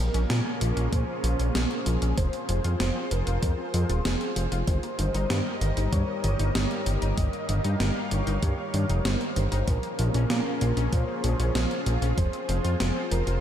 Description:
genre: synthwave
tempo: 96 BPM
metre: 4/4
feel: straight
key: unclear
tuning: A4 = 444 Hz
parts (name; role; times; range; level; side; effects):
- wide unison lead; melody; 0.0-13.4 s; Ab4 to Eb5; -34 LUFS; equal; analog chorus, tape echo, shimmer reverb
- lush unison pad; sustained chords; 0.0-13.4 s; G3 to F5; -33 LUFS; equal; chorus, phaser, vintage 12-bit sampler grit, sidechain pumping, shimmer reverb
- analog pluck; arpeggios; 0.0-13.4 s; Eb3 to F4; -35 LUFS; left 3 dB; chorus, diffuse ambient delay, shimmer reverb
- fat analog bass; bass; 0.0-13.4 s; Eb1 to Bb2; -26 LUFS; equal; tube saturation
- gated 80s digital drum machine; drums; 0.1-13.4 s; hi-hat, snare drum; -32 LUFS; right 1 dB; gated reverb, gated reverb snare
- electronic kick drum; drums; 0.9-12.3 s; none; -26 LUFS; equal; none
room: light reverb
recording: none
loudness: -24 LUFS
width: side -10 dB against mid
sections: 0.0-13.4 A section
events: none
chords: 0.0 Bbm7; 2.2 Fm; 4.7 Eb/G; 9.7 Bbm7; 12.2 Fm

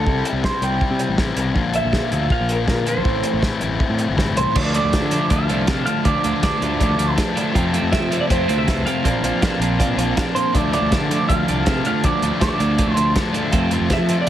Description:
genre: indie rock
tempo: 160 BPM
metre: 4/4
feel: straight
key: D minor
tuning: A4 = 441 Hz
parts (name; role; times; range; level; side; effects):
- electric guitar through a small old amp; melody; 0.0-14.3 s; A4 to G5; -24 LUFS; right 2 dB; phaser, plate reverb
- thick fuzz guitar; riff; 0.0-14.3 s; F2 to F4; -22 LUFS; left 5 dB; distortion
- growling fingered electric bass; bass; 0.0-14.1 s; G1 to F3; -23 LUFS; equal; overdrive
- cloth-damped thuddy drum kit; drums; 0.1-14.3 s; crash cymbal, hi-hat, kick drum, snare drum; -22 LUFS; equal; none
- twelve-string electric guitar; riff; 4.6-14.3 s; F3 to D4; -23 LUFS; right 6 dB; lush chorus
room: light reverb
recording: heavily compressed radio sound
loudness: -17 LUFS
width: side -11 dB against mid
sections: 0.0-4.6 A section; 4.6-14.3 B section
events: none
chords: 0.1 C6; 1.6 Bb; 3.1 Am; 4.6 Dm; 9.0 Bbadd9; 10.5 Dm; 13.5 F

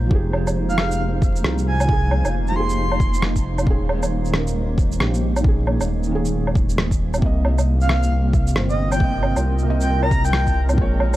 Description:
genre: future garage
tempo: 135 BPM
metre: 4/4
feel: swing 61% on 16ths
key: F minor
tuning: A4 = 440 Hz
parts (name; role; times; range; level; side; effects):
- felt-muted upright piano; accompaniment; 0.0-11.2 s; Bb2 to F5; -27 LUFS; right 2 dB; sidechain pumping, dub echo
- granular cloud pad; sustained chords; 0.0-11.2 s; Ab3 to Eb5; -28 LUFS; equal; built-in reverb, sidechain pumping
- dark detuned saw bass; bass; 0.0-11.2 s; Eb1 to C2; -21 LUFS; equal; tube saturation
- electronic kick drum; drums; 0.1-10.9 s; none; -20 LUFS; equal; overdrive, small room ambience
- electronic woodblock, shaker and rim click; drums; 0.3-11.2 s; none; -24 LUFS; right 1 dB; small room ambience
- breathy flute-like synth lead; melody; 0.7-3.2, 7.8-10.6 s; Eb5 to C6; -26 LUFS; right 1 dB; tremolo, wide subtle chorus, tape echo
room: little or no reverb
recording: dark, warm production, vinyl crackle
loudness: -17 LUFS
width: side -15 dB against mid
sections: 0.1-11.2 A section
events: none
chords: 0.1 Fm9; 3.7 Eb7sus4; 7.2 Cm7

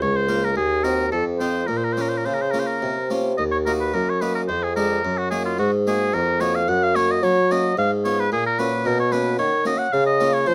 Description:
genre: classical, baroque-style sonata movement with continuo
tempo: 110 BPM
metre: 3/4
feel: straight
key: Bb minor, Eb minor from 3.4 s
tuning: A4 = 435 Hz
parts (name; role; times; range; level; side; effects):
- clear oboe; melody; 0.0-10.5 s; F4 to Gb5; -25 LUFS; equal; none
- harpsichord; accompaniment; 0.0-10.5 s; Db2 to Bb4; -27 LUFS; equal; none
- mellow bassoon; bass; 0.0-10.5 s; Db2 to Gb3; -25 LUFS; equal; none
room: light reverb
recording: close, detailed microphones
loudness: -21 LUFS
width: mono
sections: 0.0-3.4 A section; 3.4-10.5 A section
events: none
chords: 0.0 Bbm/Db; 0.6 Cdim/Eb; 1.1 F7; 1.7 Bbm; 3.4 Ebm; 4.5 Ddim/F; 5.0 Ebm/Gb; 6.7 Gb; 7.8 Fdim/Ab; 8.3 Gb/Bb; 9.9 Bbm/Db

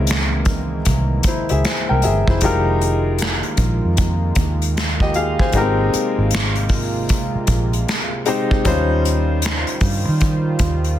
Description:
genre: R&B, neo-soul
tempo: 77 BPM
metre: 4/4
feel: swing 62% on 16ths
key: F minor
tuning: A4 = 436 Hz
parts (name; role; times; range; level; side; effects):
- clear grand piano; accompaniment; 0.0-11.0 s; G3 to Ab5; -22 LUFS; left 3 dB; plate reverb
- warm analog pad; sustained chords; 0.0-11.0 s; C3 to C5; -26 LUFS; right 3 dB; chorus, plate reverb
- vintage muted fingered electric bass; bass; 0.0-10.9 s; F1 to Eb3; -19 LUFS; equal; none
- unplugged drum kit; drums; 0.1-11.0 s; finger snaps, hi-hat, kick drum, snare drum; -20 LUFS; equal; soft clipping on snare
room: light reverb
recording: dense, heavily limited modern master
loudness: -16 LUFS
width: side -12 dB against mid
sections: 0.0-11.0 A section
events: none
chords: 0.0 C7b9b13; 2.4 Fm11; 5.5 Abmaj9; 8.7 Eb13

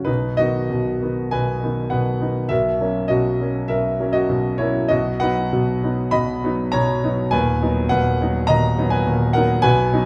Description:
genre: classical, romantic character piece for solo piano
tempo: 100 BPM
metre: 4/4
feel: uneven beats, rubato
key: B major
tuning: A4 = 440 Hz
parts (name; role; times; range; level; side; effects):
- clear concert grand piano; solo; 0.0-10.1 s; D#1 to B5; -20 LUFS; equal; none
room: moderate recital hall reverb, RT60 1.3 s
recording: recorded in a church or concert hall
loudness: -20 LUFS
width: mono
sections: 0.1-10.1 A section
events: none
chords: 0.1 B; 2.5 F#7/B; 4.9 B; 7.3 B/D#

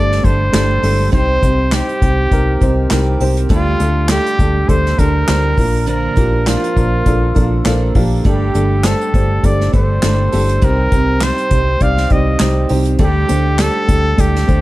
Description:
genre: piano-driven pop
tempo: 101 BPM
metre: 4/4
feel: swing 56% on 16ths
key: G minor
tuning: A4 = 439 Hz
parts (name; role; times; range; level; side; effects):
- breathy trumpet; melody; 0.0-14.6 s; F4 to F5; -19 LUFS; equal; none
- dark upright piano; accompaniment; 0.0-14.6 s; G2 to D5; -20 LUFS; equal; none
- picked steel-string acoustic guitar; riff; 0.0-14.6 s; G2 to Bb4; -23 LUFS; right 4 dB; none
- vintage muted fingered electric bass; bass; 0.0-14.6 s; G1 to D2; -16 LUFS; equal; none
- unplugged drum kit; drums; 0.1-14.6 s; handclaps, hi-hat, kick drum, snare drum; -17 LUFS; equal; none
room: studio reverb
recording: dark, warm production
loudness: -12 LUFS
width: side -17 dB against mid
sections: 0.0-14.6 A section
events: none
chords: 0.0 Gsus2; 1.1 Cm; 3.5 Dsus4; 5.6 Bb; 8.3 Gsus2; 10.6 Cm; 13.0 Dsus4

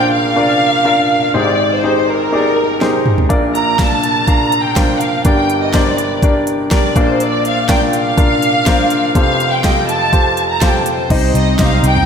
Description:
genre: piano-driven pop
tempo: 123 BPM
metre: 4/4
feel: straight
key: Bb major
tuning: A4 = 440 Hz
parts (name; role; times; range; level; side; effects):
- warm studio violin section; melody; 0.0-12.1 s; Bb4 to Bb5; -16 LUFS; right 1 dB; diffuse ambient delay
- bright upright piano; accompaniment; 0.0-12.1 s; F1 to F5; -15 LUFS; left 1 dB; none
- pop drum kit; drums; 2.8-12.1 s; crash cymbal, hi-hat, kick drum, snare drum, toms; -16 LUFS; equal; none
- muted studio string section; sustained chords; 11.1-12.1 s; G3 to Eb4; -20 LUFS; right 1 dB; none
- vintage muted picked electric bass; bass; 11.1-12.0 s; C2; -14 LUFS; equal; none
room: wet lush hall reverb, RT60 1.9 s, small room reverb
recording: dreamy mix soaked in reverb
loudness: -11 LUFS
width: side -7 dB against mid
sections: 0.0-11.1 A section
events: drum fill 2.8-3.3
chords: 0.0 Bb; 1.3 Abmaj7; 3.3 Bb; 5.3 Gm; 7.0 Bb; 9.2 Fadd9; 11.1 Cm

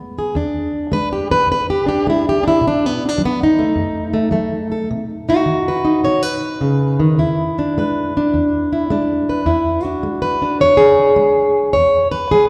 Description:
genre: acoustic country blues, solo or duo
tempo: 106 BPM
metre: 4/4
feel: swing 67% on 8ths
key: E mixolydian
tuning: A4 = 441 Hz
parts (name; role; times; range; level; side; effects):
- fingerpicked plugged-in steel-string acoustic guitar; solo; 0.0-12.5 s; E2 to C#5; -16 LUFS; equal; none
room: wet concert hall reverb, RT60 2.2 s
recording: recorded in a church or concert hall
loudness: -16 LUFS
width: mono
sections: 0.0-11.7 A section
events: none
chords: 0.0 E7; 2.6 B7; 7.2 E7; 11.7 E

